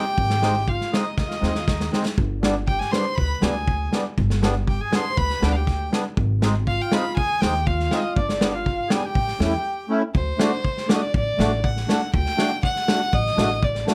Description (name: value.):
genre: klezmer.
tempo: 120 BPM.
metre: 4/4.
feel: straight.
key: G phrygian dominant.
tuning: A4 = 440 Hz.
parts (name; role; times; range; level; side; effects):
clear violin; melody; 0.0-13.9 s; C5 to C6; -29 LUFS; equal; none.
mellow accordion; second line; 0.0-9.9 s; D4 to C5; -30 LUFS; equal; none.
accordion; accompaniment; 0.0-13.9 s; G3 to F#4; -28 LUFS; equal; light tremolo tuning.
upright bass; bass; 0.2-13.8 s; G1 to E2; -27 LUFS; equal; none.
warm soul drum kit; drums; 0.2-13.9 s; kick drum, snare drum; -26 LUFS; equal; none.
room: moderate small room reverb, RT60 0.5 s.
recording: none.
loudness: -22 LUFS.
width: mono.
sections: 0.0-10.2 A section; 10.2-13.9 B section.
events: drum fill 1.2-2.2; break 9.7-10.2.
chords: 0.0 Ab; 2.2 G; 6.2 Ab; 8.2 G; 9.2 A7; 10.2 D.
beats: | 0.18 0.68 1.18 1.67 | 2.17 2.67 3.17 3.67 | 4.17 4.67 5.17 5.67 | 6.17 6.66 7.16 7.66 | 8.16 8.66 9.15 9.65 | 10.15 10.65 11.14 11.64 | 12.14 12.63 13.13 13.62.